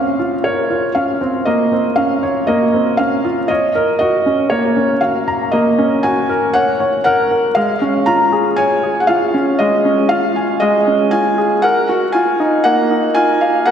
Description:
electronica; 118 BPM; 4/4; straight; Bb minor; A4 = 439 Hz
felt-muted upright piano; melody; 0.0-13.7 s; Db5 to Bb5; -16 LUFS; equal
dark grand piano; riff; 0.0-13.7 s; Ab3 to Bb5; -15 LUFS; equal
wet scoring stage reverb, RT60 2.0 s; high-pass filter; -12 LUFS; side -8 dB against mid
0.0-13.7 A section
build-up 0.0-13.7
0.0 Bbmadd9; 3.5 Gb; 7.6 Db; 11.6 Ebmadd9
0.45 0.96 | 1.47 1.97 2.48 2.99 | 3.50 4.01 4.52 5.02 | 5.53 6.04 6.55 7.06 | 7.57 8.07 8.58 9.09 | 9.60 10.11 10.62 11.13 | 11.63 12.14 12.65 13.16 | 13.67

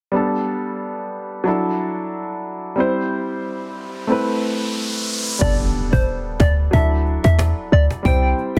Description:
dancehall; 91 BPM; 4/4; swing 56% on 16ths; G major; A4 = 438 Hz
warm baby grand piano; accompaniment; 0.1-8.6 s; F#3 to C5; -24 LUFS; equal
riser and impact; sound effects; 3.8-8.1 s; -30 LUFS; equal
soft struck synth lead; melody; 5.4-8.3 s; C5 to G5; -26 LUFS; equal; chorus, digital delay
short 808-style bass; bass; 5.4-8.6 s; G1 to E2; -18 LUFS; equal
cajon; drums; 5.4-8.6 s; -26 LUFS; equal
light reverb, small room ambience; dense, heavily limited modern master; -20 LUFS; mono
0.1-5.4 A section; 5.4-8.6 B section
riser 3.8-5.4; impact 5.4-8.1
0.1 Gadd9; 1.5 Dadd9; 2.8 C; 4.1 Amadd9; 5.4 Gadd9; 6.7 Dadd9; 8.1 C
| 0.14 0.80 1.46 2.12 | 2.78 3.44 4.09 4.75 | 5.41 6.07 6.73 7.39 | 8.05

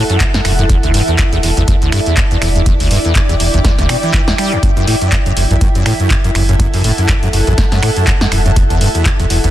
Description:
acid house; 122 BPM; 4/4; swing 57% on 16ths; F# phrygian; A4 = 439 Hz
liquid acid bass; riff; 0.0-9.5 s; D2 to G3; -15 LUFS; equal; ensemble chorus, digital delay
granular cloud pad; texture; 0.0-9.5 s; E4 to G5; -18 LUFS; right 1 dB; built-in reverb, sidechain pumping
punchy analog drum machine; drums; 0.1-9.5 s; finger snaps, handclaps, hi-hat, snare drum; -19 LUFS; equal
electronic kick drum; drums; 0.2-9.2 s; -15 LUFS; equal
warm sub bass; bass; 0.4-9.5 s; D1 to A1; -17 LUFS; equal; sidechain pumping
light reverb; dense, heavily limited modern master; -10 LUFS; side -13 dB against mid
0.0-9.5 A section
0.0 F#m7; 0.7 Em7; 4.6 F#m7; 8.6 Em7
0.20 | 0.69 1.19 1.68 2.17 | 2.66 3.15 3.65 4.14 | 4.63 5.12 5.61 6.11 | 6.60 7.09 7.58 8.07 | 8.56 9.06

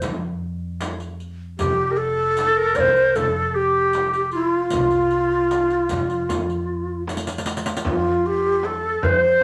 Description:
Persian modal ensemble; 77 BPM; 4/4; straight; F dastgah mahur; A4 = 438 Hz
breathy bright low ney; melody; 0.0-9.4 s; F4 to D5; -22 LUFS; equal
upright bass; bass; 0.0-9.4 s; F1 to F2; -32 LUFS; equal
frame drum; percussion; 0.0-9.2 s; -34 LUFS; equal
riq; percussion; 0.0-7.8 s; -33 LUFS; equal
tombak; percussion; 0.0-9.4 s; -36 LUFS; equal
warm clarinet; second line; 1.6-9.4 s; F4 to C5; -27 LUFS; equal
wet studio reverb, RT60 0.5 s; -21 LUFS; mono
0.0-7.8 A section; 7.8-9.4 B section
drum fill 7.1-7.8
0.03 0.81 | 1.59 2.37 3.15 3.94 | 4.72 5.50 6.28 7.06 | 7.84 8.62 9.40

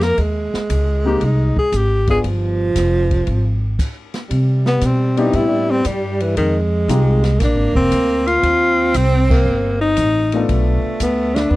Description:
jazz, small-group swing and bop; 116 BPM; 4/4; swing 69% on 8ths; A4 = 441 Hz
warm tenor saxophone; melody; 0.0-11.6 s; Eb3 to Bb4; -17 LUFS; left 2 dB
breathy tenor saxophone; second line; 0.0-11.6 s; F3 to C4; -22 LUFS; right 3 dB
upright bass; bass; 0.0-11.6 s; F1 to C3; -18 LUFS; equal
open jazz drum kit; drums; 0.0-11.4 s; crash cymbal, hi-hat, kick drum, ride cymbal, snare drum; -25 LUFS; equal
warm baby grand piano; accompaniment; 1.0-7.2, 10.3-11.0 s; Ab3 to A4; -21 LUFS; left 4 dB
little or no reverb; dry, close 1970s-style studio recording; -14 LUFS; side -18 dB against mid
0.0-4.3 A section; 4.3-11.6 B section
stop 3.8-4.3; band accent 9.2
0.2 Abmaj7; 2.2 Fmadd9; 4.3 Cmaj9; 6.4 Fm7; 7.4 Bb9; 8.4 Eb69; 10.5 Bm7b5
| 0.17 0.69 1.21 1.72 | 2.24 2.75 3.27 3.78 | 4.30 4.82 5.33 5.85 | 6.36 6.88 7.40 7.91 | 8.43 8.94 9.46 9.97 | 10.49 11.01 11.52

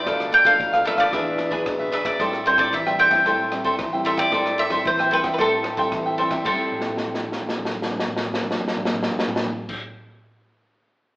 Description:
samba and choro; 113 BPM; 4/4; straight; A minor; A4 = 441 Hz
bowl-back mandolin; melody; 0.0-9.8 s; A4 to G5; -20 LUFS; equal
cavaquinho; accompaniment; 0.0-10.0 s; D4 to G5; -23 LUFS; equal
nylon-string guitar; accompaniment; 0.0-10.1 s; A2 to G#4; -29 LUFS; left 1 dB
open jazz drum kit; drums; 0.1-9.8 s; crash cymbal, kick drum, ride cymbal, rim click, snare drum, toms; -27 LUFS; equal
wet large studio reverb, RT60 1.2 s; band playing live in one room, AM radio sound; -19 LUFS; side -21 dB against mid
0.0-6.5 A section; 6.5-10.7 B section
drum fill 6.7-9.7
0.1 Bm7b5; 1.1 E7; 2.2 Am7
| 0.06 0.59 1.13 1.66 | 2.19 2.73 3.26 3.79 | 4.33 4.86 5.39 5.92 | 6.45 6.99 7.52 8.05 | 8.58 9.11 9.64

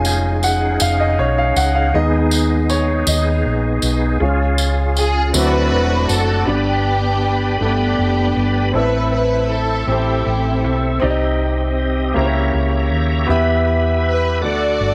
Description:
slow gospel; 53 BPM (dotted quarters); 6/8; straight; G major from 6.5 s; A4 = 440 Hz
clear baby grand piano; accompaniment; 0.0-14.9 s; G2 to G#5; -23 LUFS; equal
bright tonewheel organ; sustained chords; 0.0-14.9 s; A3 to D6; -25 LUFS; equal; slow rotary speaker, overdrive, chorus vibrato
hollow-body short-scale fingered electric bass; bass; 0.0-14.9 s; E1 to E2; -21 LUFS; equal
tambourine; percussion; 0.0-6.4 s; -26 LUFS; equal
warm studio string section; melody; 5.0-14.9 s; B3 to D5; -22 LUFS; equal
light reverb, small room ambience; -17 LUFS; mono
0.0-6.5 A section; 6.5-14.9 B section
grand piano solo 0.0-6.5
0.0 C#/E#; 1.9 G#m/D#; 4.2 C#; 5.3 D7; 6.5 G; 8.7 Am; 11.0 Cm; 12.2 C#dim7; 13.3 Em; 14.4 D
0.81 | 1.94 3.08 | 4.21 5.34 | 6.48 7.61 | 8.74 9.88 | 11.02 12.15 | 13.29 14.42

